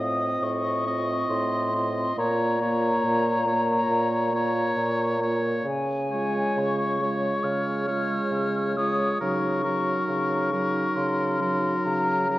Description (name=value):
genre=classical, slow romantic movement for wind quintet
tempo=68 BPM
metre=4/4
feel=rubato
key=Bb minor, Db major from 5.7 s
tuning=A4 = 439 Hz
part: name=mellow silver concert flute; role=melody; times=0.0-12.4 s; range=Ab5 to F6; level=-28 LUFS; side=left 2 dB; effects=none
part: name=clear oboe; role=second line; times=0.0-12.4 s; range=Bb4 to Eb5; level=-29 LUFS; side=equal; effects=none
part: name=dark clarinet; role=accompaniment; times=0.0-12.4 s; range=Eb4 to F4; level=-34 LUFS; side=right 4 dB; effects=none
part: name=mellow French horn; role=accompaniment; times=0.0-12.4 s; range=Gb3 to C4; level=-30 LUFS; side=equal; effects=none
part: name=mellow bassoon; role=bass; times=0.0-12.4 s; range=A2 to Db3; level=-28 LUFS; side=right 1 dB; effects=none
room=wet scoring stage reverb, RT60 1.7 s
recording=worn, warbling old tape, cassette tape, warbly pitch drift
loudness=-22 LUFS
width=side -16 dB against mid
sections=0.0-12.4 A section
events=none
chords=0.0 F7/A; 2.2 Bbm; 5.7 Db; 9.2 Ebm7/Db